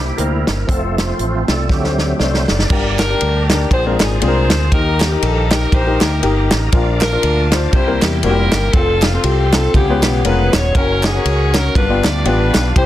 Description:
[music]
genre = uptempo gospel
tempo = 119 BPM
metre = 4/4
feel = swing 57% on 8ths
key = unclear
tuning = A4 = 440 Hz
[part]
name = clear concert grand piano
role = accompaniment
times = 0.0-12.9 s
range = G2 to D5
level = -20 LUFS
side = left 4 dB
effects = none
[part]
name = bright tonewheel organ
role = sustained chords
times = 0.0-12.9 s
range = F3 to D6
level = -25 LUFS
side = right 2 dB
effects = fast rotary speaker, chorus vibrato
[part]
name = fingered electric bass with an envelope filter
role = bass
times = 0.0-12.9 s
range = Eb1 to E2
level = -18 LUFS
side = equal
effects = none
[part]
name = warm soul drum kit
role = drums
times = 0.2-12.9 s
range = crash cymbal, hi-hat, kick drum, ride cymbal, snare drum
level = -17 LUFS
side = equal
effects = none
[part]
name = clear saxophone section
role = melody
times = 3.0-12.9 s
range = Bb3 to D5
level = -19 LUFS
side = left 1 dB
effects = slapback echo
[part]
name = group handclap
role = percussion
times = 3.0-12.6 s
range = none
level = -27 LUFS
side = right 3 dB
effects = none
[sound]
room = light reverb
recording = dense, heavily limited modern master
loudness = -12 LUFS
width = side -13 dB against mid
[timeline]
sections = 0.0-2.7 A section; 2.7-12.9 B section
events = tonewheel organ solo 0.0-2.7; drum fill 1.7-2.7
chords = 0.0 C7; 0.7 F; 1.7 D7; 2.7 Gm; 3.7 Bb9; 4.7 Eb; 6.7 Bb; 7.7 C7; 8.7 F; 9.7 Db7; 10.8 Gb; 11.8 G7

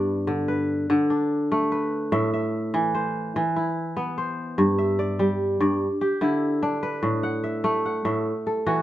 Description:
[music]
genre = west african traditional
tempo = 98 BPM (dotted quarters)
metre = 12/8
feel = straight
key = G major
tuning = A4 = 441 Hz
[part]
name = kora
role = solo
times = 0.0-8.8 s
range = G2 to F#5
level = -22 LUFS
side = equal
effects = none
[sound]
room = moderate stone room reverb, RT60 1.0 s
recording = band playing live in one room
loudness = -22 LUFS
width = side -13 dB against mid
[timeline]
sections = 0.0-4.6 A section; 4.6-8.8 B section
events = none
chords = 0.0 G; 0.9 D5; 2.1 Am; 3.4 E5; 4.6 G5; 5.8 Dsus24; 7.0 A5; 8.3 Esus24

